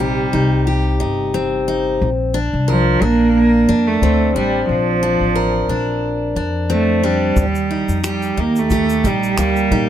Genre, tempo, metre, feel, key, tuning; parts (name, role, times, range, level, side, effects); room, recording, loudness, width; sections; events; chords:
acoustic pop; 90 BPM; 4/4; swing 55% on 16ths; Bb major; A4 = 440 Hz
rich cello; melody; 0.0-9.9 s; F3 to Bb3; -17 LUFS; right 3 dB
picked steel-string acoustic guitar; accompaniment; 0.0-9.9 s; C3 to Bb4; -19 LUFS; left 2 dB
upright bass; bass; 0.0-9.9 s; G1 to F2; -20 LUFS; left 1 dB
unplugged drum kit; drums; 7.4-9.9 s; finger snaps, kick drum, shaker; -22 LUFS; right 1 dB
little or no reverb; -14 LUFS; side -10 dB against mid
0.0-9.9 A section
0.0 Cm; 2.0 Bbadd9; 7.4 Ebadd9